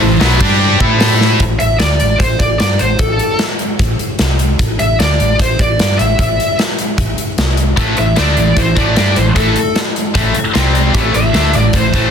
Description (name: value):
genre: hard rock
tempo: 151 BPM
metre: 4/4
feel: straight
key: A minor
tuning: A4 = 440 Hz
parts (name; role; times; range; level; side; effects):
- chorused pulse-width pad; sustained chords; 0.0-1.4, 7.8-12.1 s; A3 to A5; -25 LUFS; equal; none
- high-gain distorted guitar; riff; 0.0-1.4, 7.8-12.1 s; A2 to A4; -17 LUFS; left 13 dB; distortion
- scooped high-gain guitar; riff; 0.0-1.4, 7.8-12.1 s; A2 to A4; -18 LUFS; right 12 dB; distortion
- tight distorted guitar; riff; 0.0-1.4 s; A2 to A4; -19 LUFS; right 1 dB; distortion
- hollow-body short-scale fingered electric bass; bass; 0.0-12.1 s; A1 to A2; -15 LUFS; equal; none
- big rock drum kit; drums; 0.2-12.0 s; crash cymbal, hi-hat, kick drum, snare drum; -15 LUFS; equal; none
- high-gain lead guitar; melody; 1.6-12.1 s; A4 to E5; -17 LUFS; equal; distortion, digital delay
room: studio reverb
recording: dense, heavily limited modern master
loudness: -10 LUFS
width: side -7 dB against mid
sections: 0.0-1.4 A section; 1.4-12.1 B section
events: drum fill 1.2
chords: 0.4 G5; 0.8 Am; 1.4 Asus4; 4.2 N.C.; 4.6 A5; 7.4 N.C.; 7.8 A5; 10.6 C5; 11.0 Am